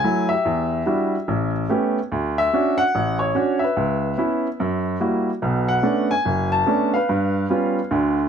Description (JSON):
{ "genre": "jazz", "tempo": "145 BPM", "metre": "4/4", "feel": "swing 65% on 8ths", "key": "unclear", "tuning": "A4 = 439 Hz", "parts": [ { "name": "clear baby grand piano", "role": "solo", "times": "0.0-8.3 s", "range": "F#1 to A5", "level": "-18 LUFS", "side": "equal", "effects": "none" } ], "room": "light reverb", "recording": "none", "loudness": "-19 LUFS", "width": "side -7 dB against mid", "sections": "0.0-8.3 A section", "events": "none", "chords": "0.4 Em9; 1.3 A9; 2.1 Dmaj7; 3.8 C#m7; 4.6 F#7b9; 5.4 Bm9; 7.1 G7#11", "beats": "0.03 | 0.44 0.86 1.27 1.69 | 2.10 2.52 2.93 3.35 | 3.76 4.17 4.59 5.00 | 5.42 5.83 6.25 6.66 | 7.08 7.49 7.91" }